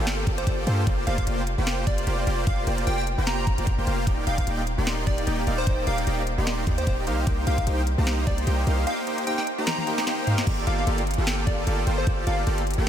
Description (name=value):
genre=future bass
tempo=150 BPM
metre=4/4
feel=swing 56% on 16ths, half-time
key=G minor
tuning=A4 = 440 Hz
part: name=supersaw chords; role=riff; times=0.0-12.9 s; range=Bb3 to C6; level=-28 LUFS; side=equal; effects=sidechain pumping, diffuse ambient delay
part: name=warm 808-style bass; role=bass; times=0.0-12.9 s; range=Eb1 to G2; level=-26 LUFS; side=equal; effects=sidechain pumping
part: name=trap drum kit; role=drums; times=0.1-12.8 s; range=crash cymbal, hi-hat, snare drum, toms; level=-32 LUFS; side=equal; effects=none
part: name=electronic kick drum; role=drums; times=0.3-12.2 s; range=none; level=-25 LUFS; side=equal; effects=none
part: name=plucky unison lead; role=melody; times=0.4-12.4 s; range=C5 to Bb5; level=-32 LUFS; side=equal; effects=sidechain pumping, diffuse ambient delay
room=moderate huge ambient reverb, RT60 8.2 s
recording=dreamy mix soaked in reverb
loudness=-22 LUFS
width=side -10 dB against mid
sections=0.0-10.5 A section; 10.5-12.9 A section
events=drop 0.0-10.5, 10.5-12.9; drum fill 9.7-10.5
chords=0.0 Gm9; 0.9 Bb69/F; 4.1 Ebmaj7; 7.1 Cm7; 10.5 Gm9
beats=0.07 0.47 | 0.87 1.27 1.67 2.07 | 2.47 2.87 3.27 3.67 | 4.07 4.47 4.87 5.27 | 5.67 6.07 6.47 6.87 | 7.27 7.67 8.07 8.47 | 8.87 9.27 9.67 10.07 | 10.47 10.87 11.27 11.67 | 12.07 12.47 12.87